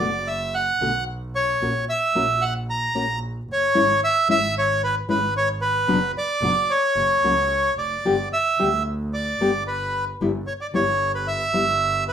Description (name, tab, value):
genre	tango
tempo	112 BPM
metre	4/4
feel	rubato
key	B minor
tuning	A4 = 440 Hz
part	bandoneon	melody	0.0-12.1 s	B4 to A#5	-20 LUFS	right 1 dB	none
part	nylon-string guitar	accompaniment	0.0-11.6 s	B2 to G4	-24 LUFS	left 3 dB	none
part	clear double bass	bass	0.0-12.1 s	E#1 to D2	-31 LUFS	right 1 dB	none
room	wet studio reverb, RT60 0.6 s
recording	rough home demo mix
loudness	-19 LUFS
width	side -8 dB against mid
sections	0.0-12.1 A section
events	none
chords	0.0 Bm; 1.6 F#/A#; 3.8 C#m/G#; 5.9 Bm/F#; 7.0 F#5; 8.1 G; 10.2 Em/G